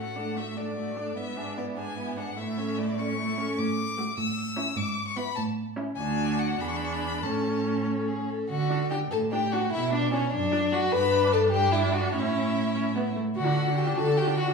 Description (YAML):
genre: quick classical-period movement for string quartet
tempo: 99 BPM (dotted quarters)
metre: 6/8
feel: straight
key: A major, D major from 8.5 s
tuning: A4 = 441 Hz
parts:
  - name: clear violin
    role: melody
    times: 0.0-14.5 s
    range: C#5 to E6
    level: -34 LUFS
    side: left 6 dB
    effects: none
  - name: dark violin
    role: second line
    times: 0.0-14.5 s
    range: C#4 to B4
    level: -28 LUFS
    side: left 3 dB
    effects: none
  - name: warm viola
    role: accompaniment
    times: 0.0-14.5 s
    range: A3 to F#4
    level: -32 LUFS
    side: right 1 dB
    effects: none
  - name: rich cello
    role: bass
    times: 0.0-14.5 s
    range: D2 to D3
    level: -30 LUFS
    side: right 3 dB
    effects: none
room: wet recital hall reverb, RT60 1.3 s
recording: studio reverb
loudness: -25 LUFS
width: side -4 dB against mid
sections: 0.0-8.5 A section; 8.5-14.5 B section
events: none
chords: 0.0 D/A; 1.2 E7/G#; 2.4 A; 3.6 D/A; 4.2 A; 4.8 E7/G#; 5.4 A; 6.0 D; 6.6 E7; 7.2 A; 8.5 D; 9.7 Bm; 10.9 Gmaj13; 12.1 A; 13.4 D